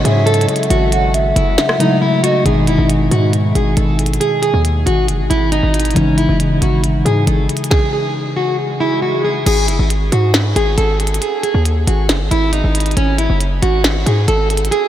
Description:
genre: hip hop, trap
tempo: 137 BPM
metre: 4/4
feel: half-time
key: G# phrygian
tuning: A4 = 437 Hz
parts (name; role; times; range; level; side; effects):
- picked plugged-in steel-string acoustic guitar; melody; 0.0-14.9 s; C#4 to A4; -18 LUFS; right 1 dB; wide subtle chorus, low-pass filter, analog delay
- hollow clarinet-like synth lead; second line; 0.0-2.4 s; D#5 to F#5; -21 LUFS; right 2 dB; chorus, analog delay
- tine electric piano; accompaniment; 0.0-9.4 s; B2 to E4; -18 LUFS; left 1 dB; analog chorus, low-pass filter
- hard-hitting 808-style bass; bass; 0.0-14.7 s; F#1 to G#2; -15 LUFS; equal; none
- minimal click drum kit; drums; 0.1-14.8 s; crash cymbal, hi-hat, kick drum, rim click, snare drum; -21 LUFS; equal; none
- swell; sound effects; 8.4-9.5 s; none; -28 LUFS; equal; none
room: moderate huge ambient reverb, RT60 7.6 s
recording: dreamy mix soaked in reverb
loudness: -12 LUFS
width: side -11 dB against mid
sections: 0.0-2.5 A section; 2.5-9.5 B section; 9.5-14.9 C section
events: kick muted 1.6-2.5, 14.7; stop 7.7-9.5; swell 8.4-9.5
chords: 0.0 F#m7/G#; 2.5 G#m; 6.0 C#madd9; 9.5 G#5; 13.0 F#sus2

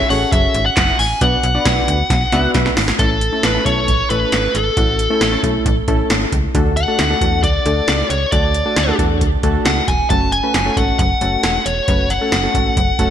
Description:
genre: synth-pop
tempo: 135 BPM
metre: 4/4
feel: straight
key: unclear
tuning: A4 = 441 Hz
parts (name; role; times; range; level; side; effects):
- fuzz lead guitar; melody; 0.0-13.1 s; A4 to A5; -18 LUFS; left 1 dB; distortion, ping-pong delay
- slap-like FM bass; bass; 0.0-13.1 s; E1 to E2; -20 LUFS; equal; none
- warm analog keys; accompaniment; 0.1-13.1 s; A3 to E5; -21 LUFS; left 1 dB; chorus
- electro analog drum machine; drums; 0.1-13.1 s; handclaps, hi-hat, kick drum, snare drum; -18 LUFS; equal; gated reverb
room: moderate lush hall reverb, RT60 1.8 s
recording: bright 1980s-style digital production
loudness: -13 LUFS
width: side -9 dB against mid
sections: 0.0-3.0 A section; 3.0-13.1 B section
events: drum fill 2.1-3.0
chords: 0.0 F#madd9; 1.2 Bm; 3.0 A; 6.5 D; 10.1 F#m

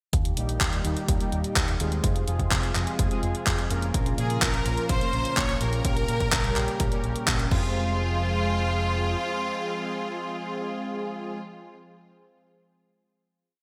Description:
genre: italo disco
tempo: 126 BPM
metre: 4/4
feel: straight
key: F minor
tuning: A4 = 439 Hz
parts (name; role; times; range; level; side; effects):
- lush unison pad; sustained chords; 0.1-11.4 s; Bb2 to C5; -36 LUFS; equal; chorus
- picked electric bass with an envelope filter; bass; 0.1-9.1 s; F1 to Bb2; -31 LUFS; equal; none
- electronic kick drum; drums; 0.1-7.6 s; none; -30 LUFS; equal; none
- gated 80s digital drum machine; drums; 0.1-7.6 s; crash cymbal, handclaps, hi-hat; -31 LUFS; equal; gated reverb, overdrive
- analog synth brass; stabs; 0.4-11.4 s; Bb2 to Bb4; -36 LUFS; equal; chorus
- bright symphonic violin section; melody; 4.2-11.4 s; F4 to Db5; -33 LUFS; equal; digital delay
room: moderate lush hall reverb, RT60 2.0 s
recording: bright 1980s-style digital production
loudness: -26 LUFS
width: mono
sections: 0.1-7.8 verse; 7.8-11.6 final hit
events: none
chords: 0.1 Eb; 2.0 Fm; 3.9 Bbm; 5.8 Gdim/Bb; 7.5 Fm

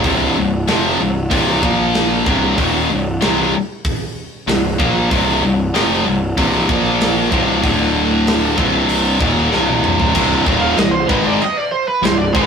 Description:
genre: heavy metal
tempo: 95 BPM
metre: 4/4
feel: straight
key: C minor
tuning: A4 = 442 Hz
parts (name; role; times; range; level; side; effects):
- high-gain distorted guitar; riff; 0.0-12.5 s; C2 to Bb3; -15 LUFS; left 1 dB; distortion
- sludgy distorted guitar; riff; 0.0, 10.2-12.5 s; C2 to Ab3; -24 LUFS; right 1 dB; none
- fuzz picked electric bass; bass; 0.0-12.5 s; C1 to Bb1; -20 LUFS; equal; overdrive
- tight metal drum kit; drums; 0.0-12.5 s; china cymbal, crash cymbal, hi-hat, kick drum, snare drum, toms; -20 LUFS; right 1 dB; none
- high-gain lead guitar; melody; 10.6-12.5 s; B4 to F5; -18 LUFS; right 3 dB; distortion
room: light reverb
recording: rough rehearsal-room recording, warm saturation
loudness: -13 LUFS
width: side -6 dB against mid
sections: 0.0-10.2 A section; 10.2-12.5 B section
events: drum fill 9.5-10.2; lead electric guitar solo 10.2-12.5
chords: 0.0 C5; 1.6 Bb5; 2.3 Cm; 6.7 Bb5; 7.3 C5; 7.6 D5; 8.6 Cm

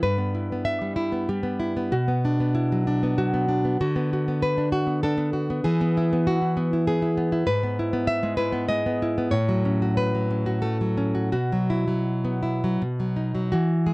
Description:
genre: romantic piece for solo classical guitar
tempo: 79-100 BPM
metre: 3/4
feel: rubato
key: E major from 5.6 s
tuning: A4 = 443 Hz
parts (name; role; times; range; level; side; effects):
- nylon-string guitar; solo; 0.0-13.9 s; G2 to E5; -21 LUFS; equal; none
room: little or no reverb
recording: dry, close 1970s-style studio recording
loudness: -22 LUFS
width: side -24 dB against mid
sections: 0.0-13.5 A section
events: none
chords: 0.0 Em/G; 1.9 Bm; 3.8 Bm/D; 5.6 E; 7.5 E/G#; 9.3 F#m/A; 11.3 Bsus4; 12.8 B

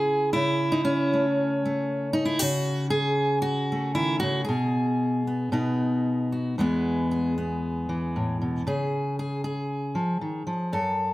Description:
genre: folk, solo fingerstyle acoustic guitar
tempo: 116 BPM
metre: 4/4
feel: straight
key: E major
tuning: A4 = 444 Hz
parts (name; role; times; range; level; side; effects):
- fingerpicked steel-string acoustic guitar; solo; 0.0-11.1 s; E2 to A4; -23 LUFS; equal; none
room: light reverb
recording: close, detailed microphones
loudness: -23 LUFS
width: side -17 dB against mid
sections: 0.0-6.6 A section; 6.6-11.1 B section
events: none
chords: 0.3 A/C#; 2.4 F#madd9/C#; 4.5 N.C.; 5.5 B; 6.6 E; 8.7 C#

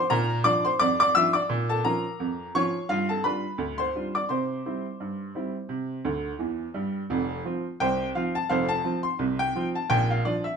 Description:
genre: ragtime piano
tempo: 86 BPM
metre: 2/4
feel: swing 57% on 16ths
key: F major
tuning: A4 = 440 Hz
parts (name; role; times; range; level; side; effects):
- clear upright piano; solo; 0.0-10.6 s; F1 to E6; -24 LUFS; equal; none
room: moderate studio reverb, RT60 1.0 s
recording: minimal, uncompressed stereo recording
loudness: -24 LUFS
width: side -6 dB against mid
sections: 0.0-7.1 A section; 7.1-10.6 B section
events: upright piano fill 6.0-7.1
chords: 0.0 Bb; 1.5 Bbm; 2.9 G7; 4.3 C; 7.1 F; 9.9 Bb

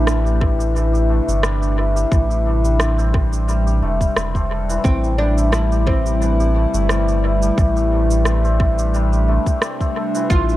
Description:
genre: organic downtempo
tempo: 88 BPM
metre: 4/4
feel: swing 54% on 16ths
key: A minor pentatonic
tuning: A4 = 441 Hz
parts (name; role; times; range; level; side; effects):
- warbly tape-like pad; sustained chords; 0.0-10.6 s; C3 to E4; -25 LUFS; equal; chorus, built-in reverb, phaser, sidechain pumping
- santur; arpeggios; 0.0-10.6 s; E3 to A4; -22 LUFS; left 2 dB; dub echo
- warm sub bass; bass; 0.0-10.6 s; E1 to A1; -18 LUFS; equal; sidechain pumping
- electronic rim click and shaker; drums; 0.1-10.6 s; none; -25 LUFS; right 1 dB; dub echo
- electronic kick drum; drums; 0.4-10.4 s; none; -18 LUFS; equal; none
- oud; melody; 4.8-10.6 s; C4 to F4; -25 LUFS; right 1 dB; tape echo
room: light reverb, digital ambience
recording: echo-heavy mix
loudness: -15 LUFS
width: side -15 dB against mid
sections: 0.0-10.6 A section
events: none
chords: 0.0 D5; 4.8 Am7

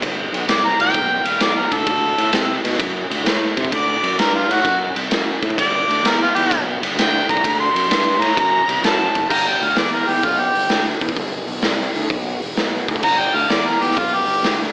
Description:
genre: blues rock power trio and southern rock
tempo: 129 BPM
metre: 4/4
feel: swing 68% on 8ths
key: unclear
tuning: A4 = 439 Hz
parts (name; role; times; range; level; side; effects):
- fuzz picked electric bass; bass; 0.0-14.7 s; E1 to C3; -24 LUFS; equal; overdrive
- raw garage drum kit; drums; 0.0-14.6 s; crash cymbal, hi-hat, kick drum, ride cymbal, snare drum; -19 LUFS; equal; none
- clear harmonica; melody; 0.5-14.6 s; F4 to D6; -18 LUFS; equal; overdrive
room: moderate lush hall reverb, RT60 1.5 s, small room ambience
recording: big arena sound, AM radio sound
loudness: -15 LUFS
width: side -26 dB against mid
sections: 0.0-9.3 A section; 9.3-14.7 A section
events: harmonica solo 0.0-14.7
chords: 0.0 G; 1.9 D; 5.6 G; 7.4 D; 9.3 G

